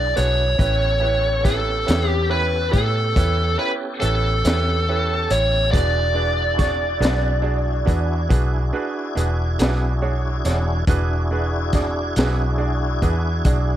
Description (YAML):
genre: slow blues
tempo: 47 BPM (dotted quarters)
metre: 12/8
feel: straight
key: E mixolydian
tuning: A4 = 440 Hz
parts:
  - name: smooth overdriven lead guitar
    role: melody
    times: 0.0-8.3 s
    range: A4 to D5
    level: -21 LUFS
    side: equal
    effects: none
  - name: bright upright piano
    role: accompaniment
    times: 0.0-13.8 s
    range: C#4 to C#6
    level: -27 LUFS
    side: right 5 dB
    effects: none
  - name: tonewheel organ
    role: sustained chords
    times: 0.0-13.8 s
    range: F#3 to A4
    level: -29 LUFS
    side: left 1 dB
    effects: slow rotary speaker, overdrive, chorus vibrato
  - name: vintage muted fingered electric bass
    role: bass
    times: 0.0-13.8 s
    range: E1 to A2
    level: -21 LUFS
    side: equal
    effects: none
  - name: crunchy breakbeat drum kit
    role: drums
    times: 0.2-13.7 s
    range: hi-hat, kick drum, snare drum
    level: -21 LUFS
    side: equal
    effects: none
room: little or no reverb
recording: none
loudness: -18 LUFS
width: side -12 dB against mid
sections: 0.0-13.8 A section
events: none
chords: 0.0 E9; 0.6 A9; 5.7 E9